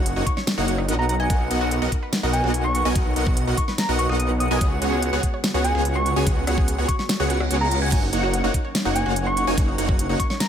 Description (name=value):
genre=future bass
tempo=145 BPM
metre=4/4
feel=half-time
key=F# major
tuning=A4 = 439 Hz
part: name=airy breathy pad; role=sustained chords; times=0.0-10.5 s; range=C#3 to A#4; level=-34 LUFS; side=left 1 dB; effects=none
part: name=airy dreamy lead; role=arpeggios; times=0.0-10.2 s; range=F#5 to G#5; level=-33 LUFS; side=equal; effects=chorus, sidechain pumping
part: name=wide unison pluck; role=arpeggios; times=0.0-10.4 s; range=D#4 to F#5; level=-35 LUFS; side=right 3 dB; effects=none
part: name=supersaw stab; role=riff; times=0.0-10.2 s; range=A#3 to G#5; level=-26 LUFS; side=equal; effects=sidechain pumping
part: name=wide detuned saw bass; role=bass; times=0.0-10.2 s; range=F#1 to C#2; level=-24 LUFS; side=equal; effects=chorus, sidechain pumping
part: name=pop drum kit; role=drums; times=0.1-10.5 s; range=crash cymbal, hi-hat, rim click, snare drum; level=-26 LUFS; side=equal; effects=none
part: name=soft struck synth lead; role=melody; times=0.3-10.5 s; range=G#5 to D#6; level=-28 LUFS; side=equal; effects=chorus, sidechain pumping, ping-pong delay
part: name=electronic kick drum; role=drums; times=0.3-10.3 s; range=none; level=-22 LUFS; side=equal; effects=none
part: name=reverse cymbal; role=sound effects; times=7.3-7.9 s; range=none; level=-32 LUFS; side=right 5 dB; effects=none
room=light reverb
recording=none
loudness=-19 LUFS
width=side -9 dB against mid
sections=0.0-10.5 A section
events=reverse cymbal 7.3-7.9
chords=0.0 F#6; 1.1 Bmaj7; 4.6 C#7sus4; 7.9 F#6